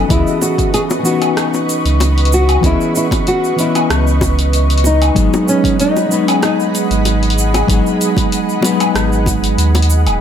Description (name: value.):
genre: sunset chillout.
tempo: 95 BPM.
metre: 4/4.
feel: straight.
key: unclear.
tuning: A4 = 440 Hz.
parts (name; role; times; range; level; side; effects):
mellow electric guitar; accompaniment; 0.0-10.2 s; E3 to D#5; -17 LUFS; moving between left 6 dB and right 6 dB; auto-pan, low-pass filter, tape echo, shimmer reverb.
ethereal airy pad; sustained chords; 0.0-10.2 s; G#4 to C#6; -21 LUFS; equal; ensemble chorus, built-in reverb, shimmer reverb.
warm sub bass; bass; 0.0-10.2 s; D#1 to D#2; -14 LUFS; right 1 dB; tube saturation.
nylon-string guitar; melody; 0.1-9.6 s; C#4 to G#4; -18 LUFS; left 1 dB; tape echo, shimmer reverb.
deep house drum kit; drums; 0.1-10.2 s; cabasa, hi-hat, rim click, woodblock; -20 LUFS; equal; none.
electronic kick drum; drums; 0.1-9.4 s; none; -18 LUFS; right 1 dB; none.
bongos; percussion; 0.4-9.9 s; none; -22 LUFS; left 4 dB; none.
room: light reverb.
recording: none.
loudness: -11 LUFS.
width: side -9 dB against mid.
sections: 0.0-10.2 A section.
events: none.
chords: 0.1 C#m9; 5.2 G#m7.